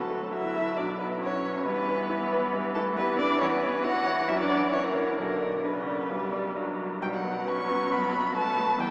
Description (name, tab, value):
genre	quick classical-period movement for piano quartet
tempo	136 BPM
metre	4/4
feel	straight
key	B minor from 3.4 s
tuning	A4 = 440 Hz
part	clear violin	melody	0.0-8.9 s	A4 to C#6	-29 LUFS	equal	none
part	rich cello	second line	0.0-8.9 s	F#3 to F#4	-32 LUFS	equal	none
part	bright baby grand piano	accompaniment	0.0-8.9 s	B1 to D5	-31 LUFS	equal	none
part	rich viola	accompaniment	0.0-8.9 s	C#3 to B3	-32 LUFS	equal	none
room	wet cathedral reverb, RT60 6.2 s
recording	heard from further back in the room, small speaker sound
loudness	-25 LUFS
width	side -27 dB against mid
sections	0.0-7.0 A section; 7.0-8.9 B section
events	none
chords	0.0 D; 0.8 B5; 1.6 Em/G; 3.4 Bsus24/E; 4.3 F#5; 5.2 Bm; 7.0 B5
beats	0.33 0.77 1.21 | 1.65 2.08 2.52 2.96 | 3.40 3.84 4.28 4.73 | 5.18 5.64 6.11 6.56 | 7.02 7.47 7.91 8.35 | 8.79